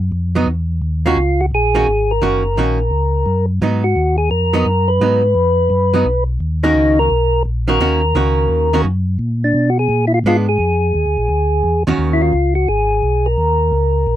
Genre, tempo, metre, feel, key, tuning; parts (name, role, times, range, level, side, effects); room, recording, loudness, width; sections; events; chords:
soul jazz organ trio; 172 BPM; 4/4; swing 64% on 8ths; Eb minor; A4 = 441 Hz
mellow tonewheel organ; bass; 0.0-14.2 s; Gb1 to Cb3; -17 LUFS; equal; overdrive, chorus vibrato, stopped rotary speaker
archtop guitar, miked and amplified; accompaniment; 0.4-12.3 s; Eb3 to Gb4; -18 LUFS; right 3 dB
percussive tonewheel organ; melody; 1.1-14.2 s; D4 to Cb5; -16 LUFS; equal; slow rotary speaker
light reverb; dry, close 1970s-style studio recording; -13 LUFS; side -12 dB against mid
0.0-14.2 A section
0.0 Abm7 (rootless); 0.8 Ebm7; 3.6 Abm7; 6.4 Ebm7; 9.2 Bb7b9; 12.0 Ebm7; 12.7 Abm; 13.4 Eb5